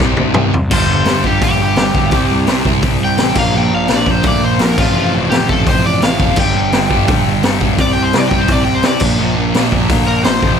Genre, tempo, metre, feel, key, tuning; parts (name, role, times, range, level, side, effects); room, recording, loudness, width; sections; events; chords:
punk rock; 170 BPM; 4/4; straight; A4 = 439 Hz
distorted electric guitar; riff; 0.0-10.6 s; F2 to C4; -19 LUFS; left 16 dB; distortion
sludgy distorted guitar; riff; 0.0-10.6 s; F2 to C5; -18 LUFS; right 14 dB; overdrive
fuzz picked electric bass; bass; 0.0-10.6 s; D1 to D2; -20 LUFS; equal; overdrive
raw garage drum kit; drums; 0.0-10.5 s; crash cymbal, hi-hat, kick drum, snare drum, toms; -15 LUFS; equal
overdriven semi-hollow guitar; melody; 0.7-10.6 s; F4 to G5; -18 LUFS; left 2 dB
little or no reverb; -11 LUFS; side -7 dB against mid
0.7-10.6 A section
drum fill 0.0-0.7; overdriven electric guitar solo 0.7-10.6
0.0 C; 0.7 G5; 2.1 C5; 3.4 Bb; 4.8 F/A; 6.4 G5; 7.8 C5; 9.0 Bb5